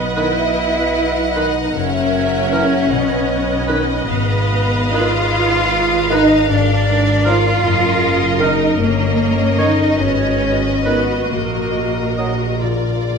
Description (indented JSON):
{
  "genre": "classical, slow romantic movement for symphony orchestra",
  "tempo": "43-53 BPM (dotted quarters)",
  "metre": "6/8",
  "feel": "rubato",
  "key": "Eb minor from 4.1 s",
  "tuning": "A4 = 438 Hz",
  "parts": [
    { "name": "rich chamber violin section", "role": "melody", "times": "0.0-13.2 s", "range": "D5 to F#5", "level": "-26 LUFS", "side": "left 2 dB", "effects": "none" },
    { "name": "large flute ensemble", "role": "second line", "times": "0.0-12.6 s", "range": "Bb4 to F5", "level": "-23 LUFS", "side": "right 2 dB", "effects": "none" },
    { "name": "rich chamber violin section", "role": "second line", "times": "0.0-13.2 s", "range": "Bb4 to E5", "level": "-28 LUFS", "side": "left 2 dB", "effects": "none" },
    { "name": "warm studio viola section", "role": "accompaniment", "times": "0.0-13.2 s", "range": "F4 to B4", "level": "-26 LUFS", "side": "right 4 dB", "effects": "none" },
    { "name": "mellow French horn section", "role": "sustained chords", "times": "0.0-13.2 s", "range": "F4 to E5", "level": "-25 LUFS", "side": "left 2 dB", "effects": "none" },
    { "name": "concert harp", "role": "arpeggios", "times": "0.0-13.2 s", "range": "F#2 to D#5", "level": "-22 LUFS", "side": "left 5 dB", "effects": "none" },
    { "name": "clear chamber double bass section", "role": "bass", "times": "0.0-13.2 s", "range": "F#1 to B1", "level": "-23 LUFS", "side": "right 3 dB", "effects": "none" },
    { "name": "rich chamber cello section", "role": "bass", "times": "0.0-12.6 s", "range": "Bb3 to F4", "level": "-19 LUFS", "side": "right 1 dB", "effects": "none" },
    { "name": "warm oboe", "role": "second line", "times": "0.2-12.3 s", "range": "Bb4 to Eb5", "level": "-26 LUFS", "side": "equal", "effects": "none" },
    { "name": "mellow bassoon", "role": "accompaniment", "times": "0.2-12.3 s", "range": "D#3 to Gb3", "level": "-25 LUFS", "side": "right 2 dB", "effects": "none" }
  ],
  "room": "wet scoring stage reverb, RT60 1.6 s",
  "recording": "minimal, uncompressed stereo recording",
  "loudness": "-14 LUFS",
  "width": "side -6 dB against mid",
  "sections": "0.0-13.2 A section",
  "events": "none",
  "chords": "0.0 B; 1.8 F#7; 2.9 B; 4.1 Fm7b5/Ab; 6.5 Bb7/Ab; 7.6 Ebm/Gb; 8.8 Eb7/G; 10.0 Abm7; 11.3 Ebm/Bb; 12.6 Bb"
}